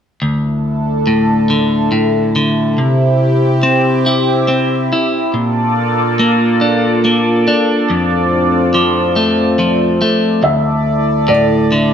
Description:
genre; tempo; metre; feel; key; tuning
post-rock; 47 BPM (dotted quarters); 6/8; straight; D minor; A4 = 441 Hz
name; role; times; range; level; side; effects
phased analog pad; sustained chords; 0.2-11.9 s; A2 to D5; -15 LUFS; equal; phaser, chorus
clean electric guitar; arpeggios; 0.2-11.9 s; D2 to E4; -14 LUFS; left 1 dB; none
felt-muted upright piano; arpeggios; 10.4-11.9 s; D5 to E5; -16 LUFS; right 1 dB; none
room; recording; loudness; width
wet stone room reverb, RT60 1.1 s; band playing live in one room; -11 LUFS; side -8 dB against mid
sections
0.2-10.4 A section; 10.4-11.9 A section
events
none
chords
0.2 Dsus2; 2.8 C; 5.3 Bbmaj7; 7.9 F6; 10.4 Dsus2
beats
| 0.21 1.50 | 2.78 4.06 | 5.34 6.62 | 7.89 9.17 | 10.44 11.72

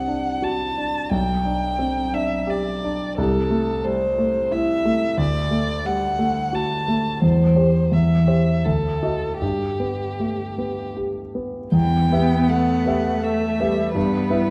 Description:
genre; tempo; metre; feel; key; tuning
classical, slow romantic movement for piano quartet; 76-90 BPM; 3/4; rubato; G major; A4 = 444 Hz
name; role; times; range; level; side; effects
rich violin; melody; 0.0-14.5 s; G4 to A5; -27 LUFS; equal; none
clear concert grand piano; accompaniment; 0.0-14.5 s; B1 to E5; -23 LUFS; equal; none
rich cello; second line; 11.7-14.5 s; E3 to B3; -26 LUFS; equal; none
rich viola; accompaniment; 11.7-14.5 s; G3 to B3; -27 LUFS; equal; none
room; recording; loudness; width
wet recital hall reverb, RT60 1.3 s; dark, warm production; -21 LUFS; mono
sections
0.0-11.7 A section; 11.7-14.5 B section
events
none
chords
0.0 D7/C; 1.1 G/B; 3.2 Am/C; 5.2 D; 7.2 C/E; 8.6 D; 9.4 G; 11.7 Em; 14.0 Em/G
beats
0.43 | 1.12 1.80 2.49 | 3.18 3.85 4.53 | 5.20 5.87 6.55 | 7.23 7.92 8.64 | 9.41 10.20 10.96 | 11.73 12.49 13.23 | 13.95

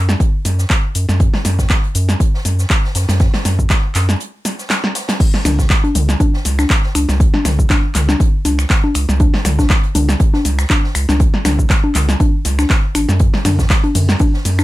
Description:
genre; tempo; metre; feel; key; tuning
acid house; 120 BPM; 4/4; swing 55% on 16ths; unclear; A4 = 439 Hz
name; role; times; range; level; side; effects
round analog bass; bass; 0.0-14.6 s; G#1 to F#2; -15 LUFS; equal; sidechain pumping
punchy analog drum machine; drums; 0.1-14.6 s; congas, crash cymbal, finger snaps, handclaps, hi-hat, ride cymbal, shaker, snare drum, toms; -17 LUFS; left 1 dB; none
electronic kick drum; drums; 0.2-14.3 s; none; -14 LUFS; equal; none
open jazz drum kit; drums; 0.2-14.6 s; hi-hat, snare drum; -31 LUFS; right 2 dB; sidechain pumping on hats, high-pass filter on hats, high-pass filter on snare, high-pass filter on room
room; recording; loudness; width
little or no reverb; none; -12 LUFS; side -17 dB against mid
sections
0.0-5.2 A section; 5.2-14.6 B section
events
break 4.2-5.2; drum fill 4.5-5.2; drop 5.2-14.6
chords
none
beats
0.20 0.70 | 1.20 1.70 2.20 2.70 | 3.20 3.70 4.20 4.70 | 5.20 5.70 6.20 6.70 | 7.20 7.70 8.20 8.70 | 9.20 9.70 10.20 10.70 | 11.20 11.70 12.20 12.70 | 13.20 13.70 14.20

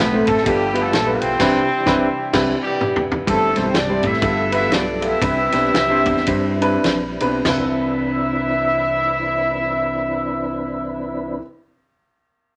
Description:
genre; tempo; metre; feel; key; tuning
uptempo gospel; 96-128 BPM; 4/4; swing 61% on 8ths; C major; A4 = 440 Hz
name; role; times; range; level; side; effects
mellow horn section; melody; 0.0-11.4 s; G3 to E5; -23 LUFS; equal; none
dark grand piano; accompaniment; 0.0-11.4 s; C2 to C5; -24 LUFS; equal; none
mellow tonewheel organ; sustained chords; 0.0-11.4 s; C3 to E5; -30 LUFS; equal; fast rotary speaker, chorus vibrato
fingered electric bass; bass; 0.0-11.4 s; G1 to G2; -31 LUFS; equal; none
warm soul drum kit; drums; 0.0-7.6 s; crash cymbal, kick drum, ride cymbal, snare drum, splash cymbal, toms; -26 LUFS; equal; none
room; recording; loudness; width
wet small room reverb, RT60 0.6 s; none; -19 LUFS; mono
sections
0.0-3.3 A section; 3.3-7.5 B section; 7.5-12.5 C section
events
band accent 1.4-3.3; drum fill 2.3-3.3; slowing down 3.3-7.5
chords
0.5 G13; 1.4 Cmaj9; 3.3 C/G; 4.2 G13; 5.2 Cmaj9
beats
0.00 0.46 0.93 | 1.40 1.87 2.34 2.81 | 3.27 3.74 4.22 4.71 | 5.21 5.73 6.28 6.85 | 7.46 8.08 8.71 9.33 | 9.96 10.59 11.21

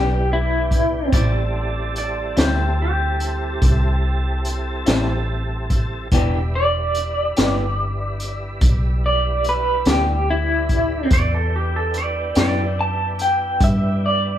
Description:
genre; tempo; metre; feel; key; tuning
slow blues; 48 BPM (dotted quarters); 12/8; straight; E minor; A4 = 440 Hz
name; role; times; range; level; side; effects
electric guitar through a small old amp; melody; 0.0-14.4 s; E4 to A5; -20 LUFS; equal; tremolo
electric guitar through a small old amp; accompaniment; 0.0-12.6 s; A2 to G4; -25 LUFS; left 1 dB; tremolo
tonewheel organ; sustained chords; 0.0-14.4 s; E3 to B4; -30 LUFS; right 1 dB; slow rotary speaker, chorus vibrato
vintage muted fingered electric bass; bass; 0.0-14.4 s; E1 to G2; -22 LUFS; equal; none
crunchy breakbeat drum kit; drums; 0.7-13.8 s; hi-hat, kick drum, snare drum; -20 LUFS; equal; none
clean lap steel guitar; second line; 1.1-12.8 s; G4 to D5; -26 LUFS; right 2 dB; none
room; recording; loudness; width
light reverb; band playing live in one room; -17 LUFS; side -11 dB against mid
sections
0.0-14.4 A section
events
none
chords
0.0 Em7; 1.1 Am7; 6.1 Em7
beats
| 1.12 2.37 3.62 4.87 | 6.12 7.36 8.61 9.86 | 11.11 12.36 13.61

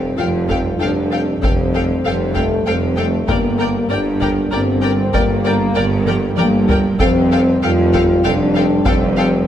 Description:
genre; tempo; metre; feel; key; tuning
cinematic, epic orchestral film score; 97 BPM; 3/4; straight; unclear; A4 = 440 Hz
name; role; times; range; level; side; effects
dark French horn section; sustained chords; 0.0-9.5 s; G3 to F4; -19 LUFS; left 3 dB; none
mellow trombone section; sustained chords; 0.0-9.5 s; G3 to C4; -23 LUFS; right 2 dB; none
clear tuba; bass; 0.0-9.4 s; F1 to G1; -23 LUFS; right 2 dB; none
rich chamber double bass section; bass; 0.0-9.4 s; F1 to G1; -23 LUFS; right 3 dB; none
rich symphonic cello section; bass; 0.0-9.4 s; F2 to G2; -23 LUFS; right 1 dB; none
warm symphonic violin section; melody; 0.2-9.3 s; G5; -28 LUFS; left 5 dB; none
dark symphonic violin section; second line; 0.2-9.2 s; D5 to F5; -27 LUFS; left 4 dB; none
clear symphonic viola section; accompaniment; 0.2-9.3 s; A4 to Bb4; -26 LUFS; equal; none
taiko ensemble; drums; 0.5-9.5 s; none; -22 LUFS; equal; none
room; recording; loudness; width
moderate recital hall reverb, RT60 1.4 s; lossy compression artefacts; -14 LUFS; side -10 dB against mid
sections
0.0-9.5 A section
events
drum fill 6.1-7.0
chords
0.0 Fadd9; 3.3 Gm; 7.0 Fadd9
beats
0.18 0.81 | 1.43 2.05 2.67 | 3.29 3.91 4.53 | 5.14 5.76 6.38 | 7.00 7.63 8.25 | 8.87

